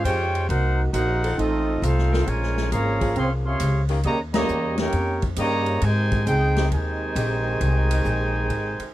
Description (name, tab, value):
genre	jazz, big band swing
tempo	135 BPM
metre	4/4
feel	swing 67% on 8ths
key	Ab major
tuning	A4 = 440 Hz
part	mellow trumpet section	melody	0.0-8.9 s	C4 to C6	-26 LUFS	equal	none
part	dark trombone section	second line	0.0-8.9 s	C3 to Ab4	-27 LUFS	right 3 dB	none
part	upright bass	bass	0.0-8.8 s	Ab1 to Ab2	-23 LUFS	left 1 dB	none
part	clear saxophone section	sustained chords	0.1-7.4 s	Eb3 to C5	-30 LUFS	left 2 dB	none
part	swinging big-band drum kit	drums	0.1-8.9 s	hi-hat, kick drum, ride cymbal, snare drum	-32 LUFS	left 1 dB	none
room	little or no reverb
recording	none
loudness	-20 LUFS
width	side -15 dB against mid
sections	0.0-8.9 A section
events	band accent 4.3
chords	0.5 Cm7b5; 1.4 F7; 2.3 Bbm7; 4.0 Eb7; 5.8 Abmaj7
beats	0.05 | 0.50 0.94 1.38 1.83 | 2.27 2.72 3.16 3.60 | 4.05 4.49 4.94 5.38 | 5.83 6.27 6.72 7.16 | 7.61 8.05 8.50